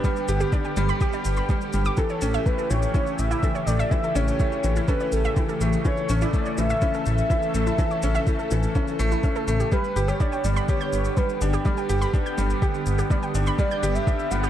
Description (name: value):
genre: piano and strings electronica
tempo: 124 BPM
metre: 4/4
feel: straight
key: G lydian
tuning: A4 = 443 Hz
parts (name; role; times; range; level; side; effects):
- warm velvety synth lead; melody; 0.0-14.5 s; G4 to F#5; -29 LUFS; equal; chorus
- lush unison pad; sustained chords; 0.0-14.5 s; C#3 to A4; -30 LUFS; equal; chorus, phaser, sidechain pumping
- warbly dusty pluck; arpeggios; 0.0-14.5 s; E4 to G6; -33 LUFS; right 4 dB; chorus, sidechain pumping, tape echo
- bright upright piano; riff; 0.0-14.5 s; E3 to G4; -28 LUFS; left 1 dB; tape echo
- electronic kick drum; drums; 0.0-14.2 s; none; -23 LUFS; equal; overdrive
- shaker; drums; 0.0-14.5 s; none; -40 LUFS; left 2 dB; overdrive
- dark detuned saw bass; bass; 0.3-14.5 s; G1 to A1; -24 LUFS; equal; sidechain pumping
room: light reverb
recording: dark, warm production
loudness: -21 LUFS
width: side -11 dB against mid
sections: 0.0-14.5 A section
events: none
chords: 0.0 G; 2.0 A7; 9.7 G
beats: | 0.04 0.53 1.01 1.49 | 1.98 2.46 2.94 3.43 | 3.91 4.40 4.88 5.36 | 5.85 6.33 6.82 7.30 | 7.78 8.27 8.75 9.23 | 9.72 10.20 10.69 11.17 | 11.65 12.14 12.62 13.11 | 13.59 14.07